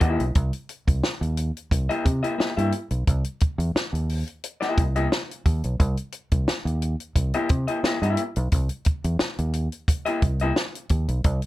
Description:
funk; 88 BPM; 4/4; straight; A4 = 445 Hz
electric guitar through a small old amp; accompaniment; 0.0-10.5 s; Bb3 to E5; -25 LUFS; left 3 dB
fingered electric bass; bass; 0.0-11.4 s; B1 to C3; -24 LUFS; equal
compact cocktail drum kit; drums; 0.0-11.5 s; hi-hat, kick drum, snare drum; -23 LUFS; equal
light reverb; -22 LUFS; side -16 dB against mid
0.0-11.5 A section
0.0 C7#9

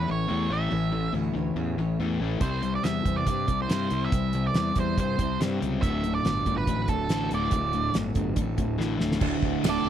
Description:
classic rock; 141 BPM; 4/4; straight; D mixolydian; A4 = 438 Hz
octave-fuzz lead guitar; melody; 0.0-9.9 s; A4 to E5; -30 LUFS; right 5 dB; distortion, slapback echo
picked steel-string acoustic guitar; accompaniment; 0.0-9.9 s; A2 to C#5; -36 LUFS; right 16 dB
sludgy distorted guitar; riff; 0.0-9.9 s; D2 to C4; -29 LUFS; left 7 dB; overdrive
fuzz fingered electric bass; bass; 0.0-9.9 s; D1 to G2; -30 LUFS; right 1 dB; overdrive
damped 70s drum kit; drums; 2.4-9.7 s; crash cymbal, hi-hat, kick drum, snare drum; -28 LUFS; right 1 dB
overdriven electric guitar; riff; 9.2-9.9 s; D2 to D3; -29 LUFS; right 17 dB
tambourine; percussion; 9.6-9.7 s; -40 LUFS; left 14 dB
octave-fuzz lead guitar; second line; 9.7-9.9 s; A4; -33 LUFS; right 10 dB; distortion
little or no reverb; dry, close 1970s-style studio recording; -24 LUFS; side -10 dB against mid
0.0-9.2 A section
drum fill 8.8-9.2
0.0 A; 2.4 C; 5.8 D

